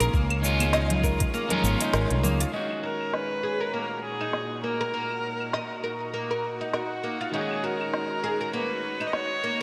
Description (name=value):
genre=organic downtempo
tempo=100 BPM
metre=4/4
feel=swing 57% on 16ths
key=Eb minor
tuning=A4 = 442 Hz
part: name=electric guitar at the edge of break-up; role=accompaniment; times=0.0-9.6 s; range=Eb3 to Gb4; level=-34 LUFS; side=equal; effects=sidechain pumping, digital delay
part: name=bowed-like drone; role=sustained chords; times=0.0-9.6 s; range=Bb2 to F5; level=-39 LUFS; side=equal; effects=built-in reverb, sidechain pumping
part: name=oud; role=arpeggios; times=0.0-9.6 s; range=Bb3 to Eb5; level=-34 LUFS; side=equal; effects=low-pass filter, digital delay
part: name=mellow fretless electric bass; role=bass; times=0.0-2.4 s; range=Ab1 to Db2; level=-28 LUFS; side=equal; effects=none
part: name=organic electronic drum kit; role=drums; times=0.0-9.6 s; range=cabasa, claves, hi-hat, snare drum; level=-35 LUFS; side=equal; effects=low-pass filter on perc, low-pass filter on hats, low-pass filter on snare, low-pass filter on room
part: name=electronic kick drum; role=drums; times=0.1-1.3 s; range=none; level=-28 LUFS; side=equal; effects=none
part: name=congas and bongos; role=percussion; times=0.6-2.4 s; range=none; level=-34 LUFS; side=equal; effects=none
part: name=rich kamancheh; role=melody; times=2.8-9.6 s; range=Gb4 to Eb5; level=-33 LUFS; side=equal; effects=digital delay
room=wet lush hall reverb, RT60 1.9 s, digital ambience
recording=bright 1980s-style digital production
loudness=-27 LUFS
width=mono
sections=0.0-2.5 A section; 2.5-9.6 B section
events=none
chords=0.1 Db; 2.5 Ebm7; 7.3 Db9sus4